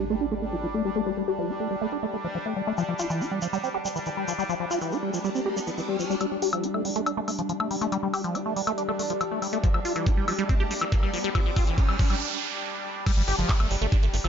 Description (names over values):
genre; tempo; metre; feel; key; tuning
psychedelic trance; 140 BPM; 4/4; straight; unclear; A4 = 440 Hz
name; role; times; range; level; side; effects
bubbling stepped-filter texture; sustained chords; 0.0-14.3 s; G3 to D4; -32 LUFS; left 1 dB; chorus, built-in reverb, sidechain pumping
liquid acid bass; riff; 0.0-14.3 s; E3 to G4; -28 LUFS; moving between left 6 dB and right 6 dB; phaser, auto-pan, sidechain pumping, digital delay
impact, riser, noise sweep and downlifter; sound effects; 0.0-14.3 s; none; -36 LUFS; right 2 dB; none
tube shaker; percussion; 2.8-6.2 s; none; -38 LUFS; right 1 dB; none
techno drum kit; drums; 6.2-14.3 s; crash cymbal, handclaps, hi-hat, woodblock; -31 LUFS; left 3 dB; none
electronic kick drum; drums; 9.6-14.0 s; none; -23 LUFS; equal; none
tight sequencer bass; bass; 13.2-14.3 s; G1; -27 LUFS; equal; none
room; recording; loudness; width
light reverb; nothing above 7.6 kHz; -24 LUFS; side -7 dB against mid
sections
0.0-6.2 A section; 6.2-13.1 B section; 13.1-14.3 C section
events
impact 0.0-1.1; filter sweep on acid bass 0.0-6.2, 6.2-13.1; riser 4.0-6.2, 6.2-12.2; build-up 6.2-13.1; filter sweep on synth texture 6.2-13.1; drum fill 9.6-12.2; noise sweep 11.3-13.1; break 12.2-13.1; drop 13.1-14.3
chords
0.0 G5; 2.8 F5; 6.2 G5; 9.6 F5; 13.1 G5